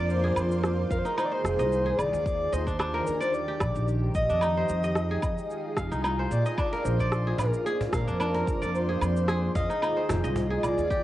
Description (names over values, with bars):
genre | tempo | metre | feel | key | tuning
organic downtempo | 111 BPM | 4/4 | swing 54% on 16ths | F dorian | A4 = 440 Hz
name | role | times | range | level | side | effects
breathy flute-like synth lead | melody | 0.0-11.0 s | Ab4 to Eb5 | -30 LUFS | equal | wide subtle chorus, cassette tape, analog delay
granular cloud pad | sustained chords | 0.0-11.0 s | Eb3 to D5 | -33 LUFS | equal | built-in reverb, sidechain pumping, cassette tape
kora | arpeggios | 0.0-11.0 s | D4 to F5 | -33 LUFS | equal | cassette tape, analog delay
upright bass | bass | 0.0-11.0 s | F1 to Bb2 | -29 LUFS | equal | tube saturation, sidechain pumping
electronic shaker, woodblock and rim click | drums | 0.1-11.0 s | none | -33 LUFS | right 1 dB | cassette tape
electronic kick drum | drums | 0.9-11.0 s | none | -32 LUFS | equal | cassette tape
cajon | percussion | 6.7-10.8 s | none | -36 LUFS | equal | none
room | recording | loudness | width
wet small room reverb, RT60 0.5 s | home recording on cassette, nothing above 10.9 kHz | -24 LUFS | side -14 dB against mid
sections
0.0-11.0 A section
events
none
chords
0.1 Fm7; 2.3 Ebmaj7; 4.4 Fm7; 6.6 Bb7; 8.7 Fm7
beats
| 0.09 0.63 1.18 1.72 | 2.26 2.80 3.34 3.88 | 4.42 4.96 5.50 6.04 | 6.58 7.12 7.66 8.20 | 8.74 9.28 9.82 10.36 | 10.90